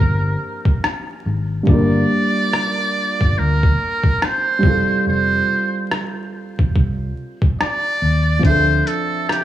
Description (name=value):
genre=lo-fi hip hop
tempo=71 BPM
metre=4/4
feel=swing 60% on 16ths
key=unclear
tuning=A4 = 440 Hz
part: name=trumpet with metal mute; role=melody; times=0.0-9.4 s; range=G4 to D5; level=-20 LUFS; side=right 1 dB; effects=cassette tape, tape echo
part: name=felt-muted upright piano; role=accompaniment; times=0.0-9.4 s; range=F3 to E5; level=-22 LUFS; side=right 1 dB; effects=cassette tape
part: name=vintage muted fingered electric bass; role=bass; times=0.0-8.8 s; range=E1 to Eb2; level=-18 LUFS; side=equal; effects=none
part: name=trip hop sampler-style drum kit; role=drums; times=0.7-9.4 s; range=hi-hat, kick drum, rim click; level=-18 LUFS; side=equal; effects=cassette tape
room=small room ambience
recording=home recording on cassette, vinyl crackle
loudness=-15 LUFS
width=side -12 dB against mid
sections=0.0-9.4 A section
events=break 0.0-8.4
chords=0.0 C9sus4; 1.7 Gm7; 4.6 Fmaj7; 8.4 Dm9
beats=0.83 | 1.67 2.52 3.36 4.21 | 5.05 5.90 6.74 7.59 | 8.43 9.28